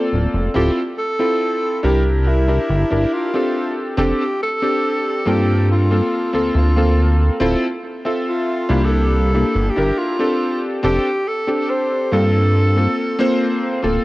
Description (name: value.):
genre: vaporwave.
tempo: 70 BPM.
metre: 4/4.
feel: straight.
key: unclear.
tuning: A4 = 440 Hz.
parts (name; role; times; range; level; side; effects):
breathy alto saxophone; melody; 0.0-13.8 s; E4 to D5; -22 LUFS; equal; tape echo.
clear electric grand piano; accompaniment; 0.0-14.0 s; Bb3 to E5; -19 LUFS; left 1 dB; lush chorus, analog delay.
chorused synth bass; bass; 0.1-14.0 s; D1 to G2; -16 LUFS; equal; none.
room: light reverb.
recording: worn, warbling old tape, cassette tape, warbly pitch drift.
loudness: -15 LUFS.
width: side -18 dB against mid.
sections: 0.0-14.0 A section.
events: none.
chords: 0.0 Gm11 (rootless); 0.6 Dm9 (rootless); 1.8 C9; 3.6 F6; 5.7 Gm11; 7.4 Dm9 (rootless); 8.7 C9; 10.4 F6; 12.6 Gm11.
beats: | 0.55 1.41 2.27 3.12 | 3.98 4.84 5.70 6.55 | 7.41 8.27 9.12 9.98 | 10.84 11.70 12.55 13.41.